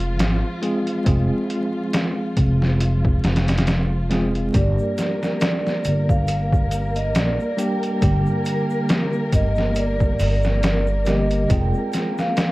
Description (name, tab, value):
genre	trip hop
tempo	69 BPM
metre	4/4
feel	swing 56% on 16ths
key	G phrygian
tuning	A4 = 440 Hz
part	bell-like tine electric piano	accompaniment	0.0-12.5 s	D3 to Ab4	-25 LUFS	equal	fast stereo tremolo
part	dark symphonic string section	sustained chords	0.0-12.5 s	F3 to Bb4	-30 LUFS	left 1 dB	vintage 12-bit sampler grit
part	upright bass	bass	0.0-11.7 s	F1 to Bb1	-21 LUFS	equal	none
part	trip hop sampler-style drum kit	drums	0.0-12.5 s	hi-hat, kick drum, snare drum	-22 LUFS	equal	overdrive
part	tube shaker	percussion	4.5-12.5 s	none	-47 LUFS	equal	none
part	vibraphone with soft mallets	melody	4.6-12.5 s	D5 to G5	-26 LUFS	right 2 dB	tape echo
room	small room ambience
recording	worn, warbling old tape, cassette tape, vinyl crackle, warbly pitch drift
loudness	-18 LUFS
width	side -19 dB against mid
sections	0.0-12.5 A section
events	none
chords	0.0 Fm; 4.5 Gm; 11.5 Fm